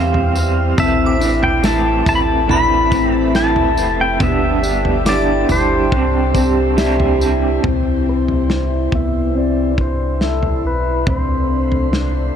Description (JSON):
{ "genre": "dream pop", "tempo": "70 BPM", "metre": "4/4", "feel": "straight", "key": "C major", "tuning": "A4 = 440 Hz", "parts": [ { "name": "pedal steel guitar", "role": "melody", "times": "0.0-12.4 s", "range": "A4 to B5", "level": "-20 LUFS", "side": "left 2 dB", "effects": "low-pass filter, tape echo" }, { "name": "electric guitar through a small old amp", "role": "accompaniment", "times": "0.0-7.7 s", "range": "G2 to C5", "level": "-22 LUFS", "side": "right 5 dB", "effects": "tremolo, analog chorus" }, { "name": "mellow brass ensemble", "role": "sustained chords", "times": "0.0-12.4 s", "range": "C3 to G4", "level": "-22 LUFS", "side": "right 3 dB", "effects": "low-pass filter" }, { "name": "mellow electric guitar", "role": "arpeggios", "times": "0.0-12.4 s", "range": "E3 to E4", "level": "-21 LUFS", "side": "left 4 dB", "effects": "wide subtle chorus, low-pass filter, tape echo" }, { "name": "sub bass with octave", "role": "bass", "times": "0.0-12.3 s", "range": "F1 to E2", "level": "-20 LUFS", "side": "equal", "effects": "none" }, { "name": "glassy synth bell", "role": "texture", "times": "0.0-6.3 s", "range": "G5 to D6", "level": "-31 LUFS", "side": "equal", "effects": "chorus, tape echo" }, { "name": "loose indie drum kit", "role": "drums", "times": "0.1-12.1 s", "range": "kick drum, snare drum, tambourine, toms", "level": "-22 LUFS", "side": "equal", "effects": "none" } ], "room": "light reverb, studio reverb", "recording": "none", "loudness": "-14 LUFS", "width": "side -8 dB against mid", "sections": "0.0-7.6 A section; 7.6-12.4 B section", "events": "filter sweep 7.6-12.4", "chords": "0.0 C; 0.8 Amadd9; 4.2 G; 5.9 Csus2; 7.6 Cmaj7; 11.1 F6/C", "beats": "| 0.78 1.64 2.50 3.35 | 4.21 5.07 5.92 6.78 | 7.64 8.50 9.35 10.21 | 11.07 11.92" }